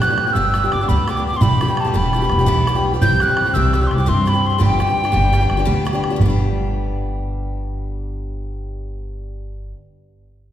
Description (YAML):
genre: celtic folk, Celtic slip jig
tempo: 113 BPM (dotted quarters)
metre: 9/8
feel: straight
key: G major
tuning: A4 = 440 Hz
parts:
  - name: mellow hollow wooden whistle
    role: melody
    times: 0.0-5.8 s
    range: G5 to G6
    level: -20 LUFS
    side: equal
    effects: none
  - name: picked steel-string acoustic guitar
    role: accompaniment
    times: 0.0-9.8 s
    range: C3 to G4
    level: -24 LUFS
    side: left 2 dB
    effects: none
  - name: bodhran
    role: percussion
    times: 0.0-6.4 s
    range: none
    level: -22 LUFS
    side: right 2 dB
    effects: none
  - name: upright bass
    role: bass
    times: 0.4-9.7 s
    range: E1 to G2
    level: -20 LUFS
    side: equal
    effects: none
room: wet concert hall reverb, RT60 2.5 s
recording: recorded in a church or concert hall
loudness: -15 LUFS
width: side -11 dB against mid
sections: 0.0-6.2 A section; 6.2-9.4 B section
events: none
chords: 0.0 G; 1.4 Em; 3.0 C; 4.6 G